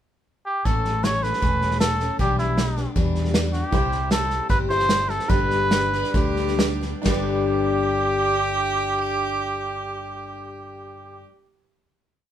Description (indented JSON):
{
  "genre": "honky-tonk and classic country",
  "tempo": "126-157 BPM",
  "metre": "4/4",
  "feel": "straight",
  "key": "G major",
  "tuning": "A4 = 440 Hz",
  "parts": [
    { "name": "trumpet with cup mute", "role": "melody", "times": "0.5-11.2 s", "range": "E4 to C#5", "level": "-24 LUFS", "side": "right 1 dB", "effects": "none" },
    { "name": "picked steel-string acoustic guitar", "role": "accompaniment", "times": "0.7-11.3 s", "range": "G2 to A4", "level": "-27 LUFS", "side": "left 5 dB", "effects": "none" },
    { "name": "fingered electric bass", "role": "bass", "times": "0.7-11.2 s", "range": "E1 to E2", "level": "-28 LUFS", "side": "equal", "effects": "none" },
    { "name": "vintage drum kit", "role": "drums", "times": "0.7-7.2 s", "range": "hi-hat, kick drum, ride cymbal, snare drum", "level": "-24 LUFS", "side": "equal", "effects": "none" },
    { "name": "tack piano", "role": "accompaniment", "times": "3.7-11.3 s", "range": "D4 to C5", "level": "-34 LUFS", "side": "right 7 dB", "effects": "none" },
    { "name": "clear fiddle", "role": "second line", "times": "5.9-11.2 s", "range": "G4 to B4", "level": "-29 LUFS", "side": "right 7 dB", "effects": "none" }
  ],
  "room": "light reverb",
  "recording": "minimal, uncompressed stereo recording",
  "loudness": "-20 LUFS",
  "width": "side -10 dB against mid",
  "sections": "0.0-0.7 pickup bar; 0.7-7.1 A section; 7.1-10.9 final chord",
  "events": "slowing down 3.7-7.1",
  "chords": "0.0 N.C.; 0.7 A; 2.2 Em7/B; 3.7 C; 5.3 G"
}